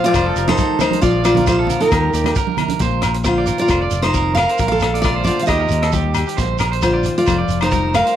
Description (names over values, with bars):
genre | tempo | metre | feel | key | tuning
highlife guitar band | 135 BPM | 4/4 | swing 53% on 16ths | Bb major | A4 = 440 Hz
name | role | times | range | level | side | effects
picked steel-string acoustic guitar | melody | 0.0-8.2 s | Eb4 to F5 | -17 LUFS | equal | none
warm tenor saxophone | second line | 0.0-2.3 s | Eb3 to F3 | -26 LUFS | left 9 dB | none
nylon-string guitar | accompaniment | 0.0-8.2 s | Bb2 to A4 | -27 LUFS | left 9 dB | none
electric guitar at the edge of break-up | arpeggios | 0.0-8.2 s | G4 to F5 | -24 LUFS | right 10 dB | none
vintage drum kit | drums | 0.0-8.2 s | hi-hat, kick drum, rim click | -24 LUFS | equal | none
fingered electric bass | bass | 0.1-8.0 s | F1 to Eb2 | -21 LUFS | equal | none
shekere | percussion | 0.1-8.1 s | none | -28 LUFS | right 4 dB | none
agogo bells | percussion | 0.2-8.1 s | none | -27 LUFS | left 11 dB | none
congas | percussion | 0.5-2.8 s | none | -24 LUFS | right 9 dB | none
room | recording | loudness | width
moderate spring reverb, RT60 2.0 s | 1960s-style stereo with parts hard left and right | -14 LUFS | side -10 dB against mid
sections
0.0-2.8 A section; 2.8-8.2 B section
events
none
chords
0.1 F; 1.0 Bbadd9; 1.9 Eb; 2.8 Bbadd9; 3.7 F; 4.6 Bbadd9; 5.5 Eb; 6.4 Bbadd9; 7.3 F